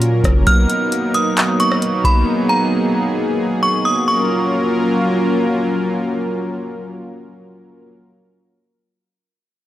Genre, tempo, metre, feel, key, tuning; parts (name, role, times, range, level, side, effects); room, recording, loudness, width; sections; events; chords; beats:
hip hop, atmospheric cloud-rap; 133 BPM; 4/4; half-time; F# major; A4 = 442 Hz
warm analog pad; sustained chords; 0.0-7.9 s; F#3 to A#4; -17 LUFS; equal; chorus, sidechain pumping
long sustained 808-style bass; bass; 0.0-0.5 s; F#1 to A#2; -16 LUFS; equal
booming analog drum machine; drums; 0.0-2.2 s; handclaps, hi-hat, kick drum, rim click; -15 LUFS; equal
metallic FM bell; melody; 0.5-5.4 s; A#5 to E#6; -19 LUFS; equal; chorus, analog delay
light reverb; dry, gritty hardware recording; -14 LUFS; side -13 dB against mid
0.0-4.1 A section; 4.1-7.7 B section
0.5 Bmaj7; 4.1 F#maj7
0.02 | 0.47 0.92 1.37 1.82 | 2.27 2.72 3.17 3.62 | 4.08 4.53 4.98 5.43 | 5.88 6.33 6.78 7.23